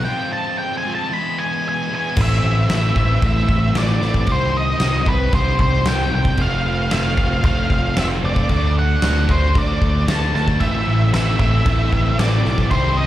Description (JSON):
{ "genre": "quiet-loud alternative rock", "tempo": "114 BPM", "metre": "4/4", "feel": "straight", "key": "A minor", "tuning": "A4 = 440 Hz", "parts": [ { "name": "octave-fuzz lead guitar", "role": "melody", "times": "0.0-13.1 s", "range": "B4 to B5", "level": "-22 LUFS", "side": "equal", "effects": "distortion, digital delay" }, { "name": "thick fuzz guitar", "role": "riff", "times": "0.0-13.1 s", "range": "A2 to G4", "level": "-24 LUFS", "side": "equal", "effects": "distortion, slapback echo" }, { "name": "picked electric bass", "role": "bass", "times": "0.0-13.1 s", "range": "F1 to D2", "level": "-19 LUFS", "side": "equal", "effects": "none" }, { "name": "huge arena drum kit", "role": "drums", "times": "2.2-12.8 s", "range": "crash cymbal, kick drum, snare drum", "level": "-21 LUFS", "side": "equal", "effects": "none" }, { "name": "thick fuzz guitar", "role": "riff", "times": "10.6-13.1 s", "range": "A2 to A4", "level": "-24 LUFS", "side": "right 1 dB", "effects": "distortion" } ], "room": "studio ambience", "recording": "live gig heard through the venue's PA, club reverb", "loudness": "-16 LUFS", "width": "side -13 dB against mid", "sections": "0.0-2.2 A section; 2.2-13.1 B section", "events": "lead electric guitar solo 0.0-2.2; break 0.1-2.2", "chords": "0.1 Fm; 1.1 E; 2.2 Am; 4.3 Cm; 6.4 F; 8.5 D; 10.6 Am" }